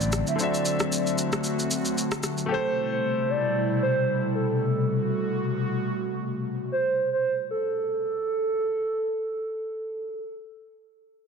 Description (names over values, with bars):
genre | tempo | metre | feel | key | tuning
amapiano | 114 BPM | 4/4 | swing 55% on 16ths | A dorian | A4 = 440 Hz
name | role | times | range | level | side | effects
hollow clarinet-like synth lead | melody | 0.0-10.4 s | A4 to E5 | -27 LUFS | right 2 dB | chorus, ping-pong delay
bright concert grand piano | accompaniment | 0.0-4.6 s | D3 to E5 | -31 LUFS | left 5 dB | none
airy breathy pad | sustained chords | 0.0-6.7 s | B2 to F#4 | -27 LUFS | left 1 dB | chorus
electronic shaker and rim click | drums | 0.0-2.5 s | none | -29 LUFS | left 1 dB | overdrive
room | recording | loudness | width
light reverb | dense, heavily limited modern master | -24 LUFS | side -5 dB against mid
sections
0.0-10.9 A section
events
none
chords
0.0 D9; 2.5 Am9; 6.7 N.C.